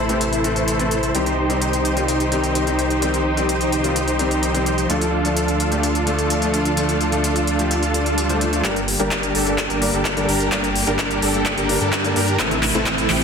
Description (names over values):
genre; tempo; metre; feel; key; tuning
EDM, festival progressive house; 128 BPM; 4/4; straight; G minor; A4 = 439 Hz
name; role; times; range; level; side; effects
rich chamber string section; sustained chords; 0.0-13.2 s; C3 to G4; -26 LUFS; right 1 dB; sidechain pumping
dense compressed supersaw; riff; 0.0-13.2 s; C4 to C5; -21 LUFS; equal; sidechain pumping, low-pass filter, dub echo
wide detuned saw bass; bass; 0.0-13.2 s; G1 to G2; -25 LUFS; equal; chorus, sidechain pumping
bright grand piano; accompaniment; 0.1-13.2 s; G2 to C5; -26 LUFS; left 4 dB; sidechain pumping, dub echo
big-room dance drum kit; drums; 0.1-13.2 s; handclaps, hi-hat; -24 LUFS; equal; none
swell and riser; sound effects; 8.0-13.2 s; none; -33 LUFS; right 2 dB; none
electronic kick drum; drums; 8.6-13.0 s; none; -32 LUFS; right 1 dB; none
room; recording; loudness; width
moderate lush hall reverb, RT60 2.0 s; dense, heavily limited modern master; -17 LUFS; side -6 dB against mid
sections
0.0-8.6 A section; 8.6-13.2 B section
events
swell 8.0-8.6; build-up 8.6-13.2; drum fill 8.6-13.2; filter sweep on supersaw synth 8.6-13.2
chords
0.0 Am; 1.1 Cm; 4.9 Dm; 8.6 Gm; 12.4 Am